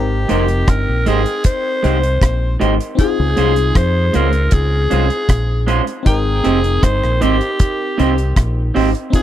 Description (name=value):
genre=lovers rock reggae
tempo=78 BPM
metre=4/4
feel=straight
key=Ab major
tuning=A4 = 440 Hz
part: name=raspy alto saxophone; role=melody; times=0.0-9.2 s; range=G4 to C5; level=-20 LUFS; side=equal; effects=tape echo
part: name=FM electric piano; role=accompaniment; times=0.0-9.2 s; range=C4 to G5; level=-23 LUFS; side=left 5 dB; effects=chorus, phaser, tape echo
part: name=deep dub fingered electric bass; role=bass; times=0.0-8.9 s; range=F1 to F2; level=-17 LUFS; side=equal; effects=none
part: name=electric guitar through a small old amp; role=stabs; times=0.3-8.9 s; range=Ab3 to C5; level=-20 LUFS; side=right 4 dB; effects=spring reverb
part: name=deep reggae drum kit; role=drums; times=0.3-9.2 s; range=hi-hat, kick drum, rim click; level=-15 LUFS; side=equal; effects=none
room=little or no reverb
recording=dry, close 1970s-style studio recording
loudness=-13 LUFS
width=side -12 dB against mid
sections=0.0-9.2 A section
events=none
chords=0.0 Abmaj7; 3.0 Dbmaj7; 6.1 Abmaj7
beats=0.68 1.45 2.21 | 2.98 3.75 4.52 5.29 | 6.06 6.83 7.60 8.37 | 9.13